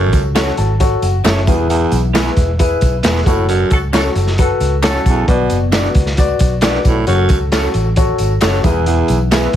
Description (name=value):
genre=uptempo 1960s-style soul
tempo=134 BPM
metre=4/4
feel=straight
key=unclear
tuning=A4 = 439 Hz
part: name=dark upright piano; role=accompaniment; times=0.0-9.6 s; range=B2 to A5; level=-18 LUFS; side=left 4 dB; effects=none
part: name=raspy baritone saxophone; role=riff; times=0.0-9.2 s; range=E2 to B2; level=-18 LUFS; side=right 4 dB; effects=none
part: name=vintage muted fingered electric bass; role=bass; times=0.0-9.6 s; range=E1 to C#2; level=-17 LUFS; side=equal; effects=none
part: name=crunchy breakbeat drum kit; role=drums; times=0.1-9.6 s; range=hi-hat, kick drum, snare drum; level=-16 LUFS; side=equal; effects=none
part: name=tambourine and handclaps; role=percussion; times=0.1-9.4 s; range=none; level=-28 LUFS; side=left 3 dB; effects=none
part: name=electric guitar through a small old amp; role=stabs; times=0.4-9.5 s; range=B3 to D5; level=-20 LUFS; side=right 3 dB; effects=none
part: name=mellow horn section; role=second line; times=3.7-5.3 s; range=C#4 to A4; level=-22 LUFS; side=equal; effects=none
room=light reverb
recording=heavily compressed radio sound, multiband compression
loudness=-12 LUFS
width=side -10 dB against mid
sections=0.0-9.6 A section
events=upright piano fill 0.4-1.7; band accent 3.5-5.3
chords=0.0 F#m; 1.5 E; 3.3 F#m; 5.3 Bm; 7.1 F#m; 8.6 E